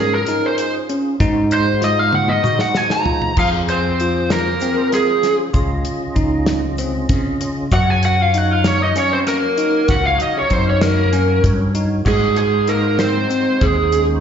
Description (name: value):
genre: progressive instrumental, band music in an uneven meter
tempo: 193 BPM (eighths)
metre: 7/8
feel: straight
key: Ab mixolydian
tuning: A4 = 440 Hz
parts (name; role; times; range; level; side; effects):
- lead guitar through a small cranked amp; melody; 0.0-14.1 s; Ab4 to Bb5; -17 LUFS; equal; overdrive, slapback echo
- percussive tonewheel organ; accompaniment; 0.0-14.2 s; Db3 to Eb5; -26 LUFS; right 3 dB; chorus vibrato, slow rotary speaker, slapback echo
- bell-like tine electric piano; arpeggios; 0.0-14.2 s; C4 to Ab4; -23 LUFS; equal; phaser, slapback echo
- mellow fretless electric bass; bass; 0.0-14.2 s; Db2 to Db3; -19 LUFS; equal; none
- damped 70s drum kit; drums; 0.3-14.1 s; crash cymbal, hi-hat, kick drum, snare drum, toms; -21 LUFS; equal; none
- egg shaker; percussion; 0.3-13.6 s; none; -44 LUFS; right 6 dB; none
- bright alto saxophone; second line; 3.4-14.1 s; Ab3 to Ab4; -28 LUFS; right 4 dB; slapback echo
room: moderate club reverb, RT60 0.5 s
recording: live gig heard through the venue's PA, recital hall reverb, nothing above 7.6 kHz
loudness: -14 LUFS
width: side -8 dB against mid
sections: 0.0-3.4 A section; 3.4-12.1 B section; 12.1-14.2 C section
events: lead electric guitar solo 0.0-3.4; drum fill 2.1-3.4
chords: 0.0 Db/Ab; 1.2 Ab7; 3.4 Fm; 5.5 Dbadd9; 7.7 Gb; 12.1 Ab7